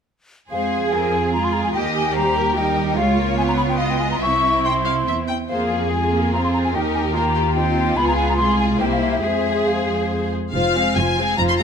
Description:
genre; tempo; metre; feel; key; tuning
quick classical-period movement for symphony orchestra; 144 BPM; 3/4; rubato; F minor; A4 = 440 Hz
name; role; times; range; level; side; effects
warm studio violin section; melody; 0.5-11.6 s; G4 to C6; -26 LUFS; left 3 dB; none
hollow concert flute; second line; 0.5-10.3 s; E5 to Db6; -22 LUFS; left 2 dB; none
warm studio violin section; second line; 0.5-11.6 s; Eb4 to F5; -27 LUFS; left 5 dB; none
rich studio viola section; accompaniment; 0.5-11.6 s; F3 to F4; -24 LUFS; right 1 dB; none
dark studio double bass section; bass; 0.5-11.6 s; F1 to F2; -24 LUFS; right 3 dB; none
warm studio cello section; bass; 0.5-11.6 s; F2 to Ab4; -25 LUFS; right 2 dB; none
room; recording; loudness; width
moderate scoring stage reverb, RT60 1.7 s; none; -17 LUFS; side -7 dB against mid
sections
0.5-10.5 A section; 10.5-11.6 A section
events
none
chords
0.5 Fm; 1.8 Eb; 3.0 Db7; 4.2 C; 5.5 Fm; 6.7 Eb; 8.0 Db7; 8.4 Fm/C; 8.8 C7; 9.2 Fm

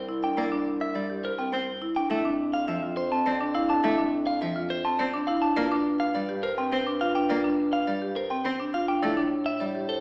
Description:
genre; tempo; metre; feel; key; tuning
classical, minimalist pattern music; 104 BPM; 3/4; straight; G dorian; A4 = 439 Hz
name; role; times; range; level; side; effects
warm bass clarinet; bass; 0.0-10.0 s; C2 to A2; -37 LUFS; equal; none
marimba with medium hard mallets; arpeggios; 0.1-10.0 s; C4 to C5; -30 LUFS; equal; none
clean electric guitar; melody; 0.2-10.0 s; A4 to A5; -32 LUFS; equal; none
rich cello; accompaniment; 0.4-9.7 s; F3 to C4; -36 LUFS; equal; none
room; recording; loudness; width
wet recital hall reverb, RT60 1.3 s; heard from further back in the room, small speaker sound; -27 LUFS; mono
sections
0.0-10.0 A section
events
none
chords
0.0 C; 2.1 Fmaj7; 5.6 G7(no3); 9.0 A7(no3)

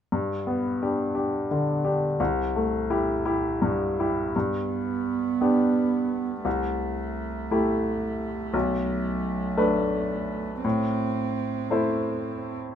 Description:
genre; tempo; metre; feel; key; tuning
neoclassical piano and strings; 57 BPM (dotted quarters); 6/8; rubato; G major; A4 = 441 Hz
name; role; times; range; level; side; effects
bright upright piano; accompaniment; 0.1-12.8 s; B1 to C5; -24 LUFS; left 2 dB; none
dark cello; second line; 4.3-12.6 s; A3 to C4; -29 LUFS; right 8 dB; none
room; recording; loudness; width
light reverb; minimal, uncompressed stereo recording; -24 LUFS; side -9 dB against mid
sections
0.1-4.3 A section; 4.3-12.8 B section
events
none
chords
0.1 G; 2.2 C6; 4.3 G; 6.5 C6; 8.5 Bm7; 10.6 Am

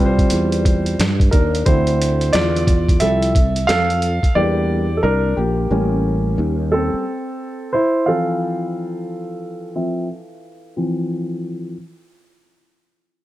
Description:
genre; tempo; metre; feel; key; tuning
hip hop, jazz-hop; 89 BPM; 4/4; swing 64% on 16ths; unclear; A4 = 440 Hz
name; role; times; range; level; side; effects
vibraphone with soft mallets; melody; 0.0-1.0 s; D5; -29 LUFS; left 5 dB; none
dark baby grand piano; accompaniment; 0.0-11.7 s; D3 to F5; -19 LUFS; equal; low-pass filter
sustaining fretless electric bass; bass; 0.0-7.0 s; A1 to G2; -20 LUFS; right 1 dB; ensemble chorus
boom bap sampler-style drum kit; drums; 0.2-4.4 s; hi-hat, kick drum, snare drum; -18 LUFS; equal; none
room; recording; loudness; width
light reverb; none; -16 LUFS; side -15 dB against mid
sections
0.0-1.7 A section; 1.7-12.4 B section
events
grand piano solo 1.7-12.4; filter sweep on grand piano 1.7-12.4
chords
0.0 Dm9; 4.4 Em7b5; 5.7 A7b9; 7.1 Fmaj7/E

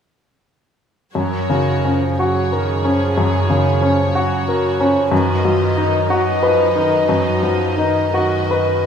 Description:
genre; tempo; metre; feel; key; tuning
classical, romantic movement for piano and orchestra; 49-63 BPM (dotted quarters); 12/8; rubato; F# major; A4 = 441 Hz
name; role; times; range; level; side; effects
dark studio viola section; accompaniment; 1.1-8.9 s; D#3 to G#4; -24 LUFS; right 2 dB; none
warm studio cello section; bass; 1.1-8.9 s; F#2; -24 LUFS; right 2 dB; none
clear baby grand piano; melody; 1.2-8.9 s; F#2 to B4; -16 LUFS; left 1 dB; none
dark studio violin section; second line; 1.2-8.9 s; A#4 to D#5; -24 LUFS; left 2 dB; none
room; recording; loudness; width
moderate recital hall reverb, RT60 1.5 s; minimal, uncompressed stereo recording; -14 LUFS; side -7 dB against mid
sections
1.1-8.9 A section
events
none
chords
1.1 F#; 5.1 B/F#

